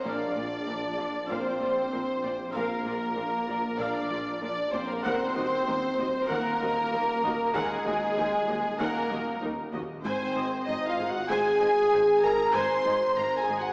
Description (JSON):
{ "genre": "cinematic, hybrid orchestral and electronic film score", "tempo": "96 BPM", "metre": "4/4", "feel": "straight", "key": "unclear", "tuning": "A4 = 440 Hz", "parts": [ { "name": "rich studio violin section", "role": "melody", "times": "0.0-13.7 s", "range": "Ab4 to C6", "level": "-32 LUFS", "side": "equal", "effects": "none" }, { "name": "clear symphonic violin section", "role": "second line", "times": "0.0-13.7 s", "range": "Ab4 to C6", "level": "-33 LUFS", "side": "equal", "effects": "none" }, { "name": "clear symphonic viola section", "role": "accompaniment", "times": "0.0-13.6 s", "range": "D4 to Ab5", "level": "-35 LUFS", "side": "equal", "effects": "none" }, { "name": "clear French horn section", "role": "sustained chords", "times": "0.0-13.7 s", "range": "Ab3 to C5", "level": "-28 LUFS", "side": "equal", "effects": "none" }, { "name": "rich studio cello section", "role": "bass", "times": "0.0-13.6 s", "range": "Eb2 to Bb2", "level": "-39 LUFS", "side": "equal", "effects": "none" }, { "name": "rich symphonic double bass section", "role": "bass", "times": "0.0-13.6 s", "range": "Ab1 to Eb2", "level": "-43 LUFS", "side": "equal", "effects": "none" }, { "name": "wide detuned saw bass", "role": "bass", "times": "0.0-13.7 s", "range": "Eb1 to Bb1", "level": "-40 LUFS", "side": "equal", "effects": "chorus" } ], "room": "wet concert hall reverb, RT60 2.2 s", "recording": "heard from further back in the room, small speaker sound", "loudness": "-25 LUFS", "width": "side -36 dB against mid", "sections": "0.0-13.7 A section", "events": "none", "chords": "0.0 Bb; 5.0 Ebm; 10.0 Ab" }